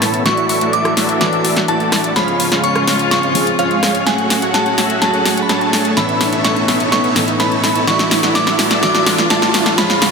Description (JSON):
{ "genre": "EDM, festival progressive house", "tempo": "126 BPM", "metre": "4/4", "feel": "straight", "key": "unclear", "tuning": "A4 = 440 Hz", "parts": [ { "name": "glassy synth bell", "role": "melody", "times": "0.0-10.1 s", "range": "E#5 to D6", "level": "-19 LUFS", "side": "equal", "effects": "chorus, ping-pong delay" }, { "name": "dark baby grand piano", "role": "accompaniment", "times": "0.0-9.9 s", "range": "A2 to A4", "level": "-23 LUFS", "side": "right 2 dB", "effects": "none" }, { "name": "warm studio string section", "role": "sustained chords", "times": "0.0-10.1 s", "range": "C#3 to F#4", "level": "-22 LUFS", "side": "left 3 dB", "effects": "none" }, { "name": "dense compressed supersaw", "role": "riff", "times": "0.0-10.1 s", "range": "G#3 to A5", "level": "-18 LUFS", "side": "right 1 dB", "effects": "low-pass filter" }, { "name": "big-room dance drum kit", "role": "drums", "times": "0.0-10.1 s", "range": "hi-hat, rim click, snare drum", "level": "-18 LUFS", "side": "left 1 dB", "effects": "studio reverb" }, { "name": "riser", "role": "sound effects", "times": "0.8-10.1 s", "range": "none", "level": "-23 LUFS", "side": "right 1 dB", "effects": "none" } ], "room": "moderate huge ambient reverb, RT60 4.8 s", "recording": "none", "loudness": "-12 LUFS", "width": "side -5 dB against mid", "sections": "0.0-10.1 A section", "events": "build-up 0.0-10.1; drum fill 0.0-10.1; filter sweep on supersaw synth 0.0-10.1; riser 0.8-10.1", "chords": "0.3 Dadd9; 2.2 C#; 4.1 F#madd9; 6.0 Aadd9; 7.9 Dadd9" }